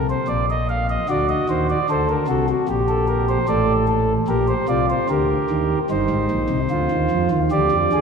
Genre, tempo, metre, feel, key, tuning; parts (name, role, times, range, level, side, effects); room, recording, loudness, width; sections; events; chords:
classical, baroque-style 3-part fugue for pipe organ; 75 BPM; 4/4; straight; G minor; A4 = 441 Hz
chamber organ, principal; solo; 0.0-8.0 s; G1 to F5; -17 LUFS; equal
wet church reverb, RT60 3.6 s; minimal, uncompressed stereo recording; -17 LUFS; side -6 dB against mid
0.0-5.9 A section; 5.9-8.0 B section
0.0 Gm/Bb (rootless); 1.1 D; 2.7 Gm; 5.9 Cm/G